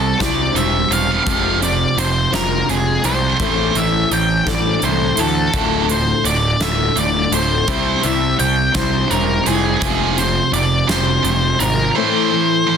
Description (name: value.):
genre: quiet-loud alternative rock.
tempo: 56 BPM (dotted quarters).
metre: 6/8.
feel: straight.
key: unclear.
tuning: A4 = 441 Hz.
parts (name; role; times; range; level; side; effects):
octave-fuzz lead guitar; melody; 0.0-12.8 s; Ab4 to G5; -19 LUFS; left 1 dB; distortion.
fingerpicked old ladder-braced acoustic guitar; arpeggios; 0.0-12.8 s; D2 to C5; -23 LUFS; left 12 dB; none.
scooped high-gain guitar; riff; 0.0-12.8 s; D2 to C4; -20 LUFS; right 10 dB; distortion.
fuzz picked electric bass; bass; 0.0-11.9 s; D1 to D2; -21 LUFS; equal; overdrive.
huge arena drum kit; drums; 0.2-11.8 s; hi-hat, kick drum, snare drum; -24 LUFS; equal; none.
room: small room ambience.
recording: dense, heavily limited modern master.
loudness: -14 LUFS.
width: side -7 dB against mid.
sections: 0.0-12.8 A section.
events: none.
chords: 0.0 C; 1.3 Fm; 3.4 Am; 5.5 Dm; 7.7 C; 9.8 Fm; 12.0 Am.